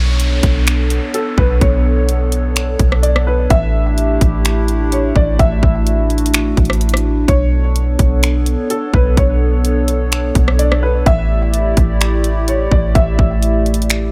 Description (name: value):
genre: hip hop, atmospheric cloud-rap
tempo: 127 BPM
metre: 4/4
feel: half-time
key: B minor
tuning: A4 = 440 Hz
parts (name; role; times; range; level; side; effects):
- felt-muted upright piano; melody; 0.0-14.1 s; A4 to E5; -24 LUFS; equal; digital delay
- hollow soft pad; sustained chords; 0.1-14.1 s; A3 to D5; -23 LUFS; equal; chorus, sidechain pumping
- soft 808-style bass; bass; 0.0-14.1 s; A1 to B1; -17 LUFS; equal; none
- downlifter; sound effects; 0.0-3.5 s; none; -30 LUFS; equal; none
- trap drum kit; drums; 0.2-14.0 s; finger snaps, hi-hat, kick drum, rim click; -18 LUFS; equal; overdrive
room: digital ambience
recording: none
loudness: -15 LUFS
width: mono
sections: 0.0-14.1 A section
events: none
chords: 0.0 Bm9; 3.5 A7sus4; 7.3 Bm9; 11.1 A7sus4